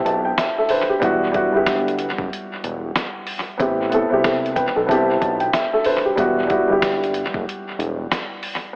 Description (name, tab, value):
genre	hip hop, boom-bap hip-hop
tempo	93 BPM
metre	4/4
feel	swing 61% on 16ths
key	E minor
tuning	A4 = 440 Hz
part	dark upright piano	accompaniment	0.0-8.8 s	G3 to A5	-19 LUFS	equal	cassette tape, high-pass filter, low-pass filter
part	fat analog bass	bass	0.1-8.1 s	E1 to C2	-25 LUFS	equal	none
part	dusty soul sampler-style drum kit	drums	0.1-8.6 s	hi-hat, kick drum, snare drum	-24 LUFS	equal	vintage 12-bit sampler grit, dub echo
room	moderate plate reverb, RT60 1.8 s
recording	echo-heavy mix, vinyl crackle, AM radio sound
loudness	-17 LUFS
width	side -28 dB against mid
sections	0.0-8.8 A section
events	none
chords	0.0 Cmaj7; 1.0 Emadd9; 3.6 Am7; 4.9 Cmaj7; 6.2 Emadd9